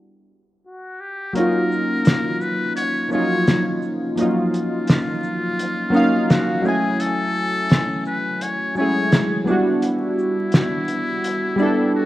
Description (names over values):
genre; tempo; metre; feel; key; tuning
lo-fi hip hop; 85 BPM; 4/4; swing 64% on 16ths; unclear; A4 = 440 Hz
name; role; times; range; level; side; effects
trumpet with metal mute; melody; 0.7-12.1 s; E4 to Db5; -25 LUFS; left 2 dB; none
warm analog keys; accompaniment; 1.3-12.1 s; F3 to Ab5; -19 LUFS; equal; chorus, cassette tape
cloth-damped thuddy drum kit; drums; 1.4-11.8 s; hi-hat, shaker, snare drum; -19 LUFS; equal; none
room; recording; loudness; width
moderate plate reverb, RT60 2.8 s; rough home demo mix, vinyl crackle, low-pass filter; -17 LUFS; side -15 dB against mid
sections
0.0-1.3 A section; 1.3-12.1 B section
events
stop 0.0-1.3; filter sweep 0.0-1.3; kick muted 1.3-12.1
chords
0.0 Emadd9 (rootless); 1.3 Ebm9; 6.6 Gbm9; 9.5 Em9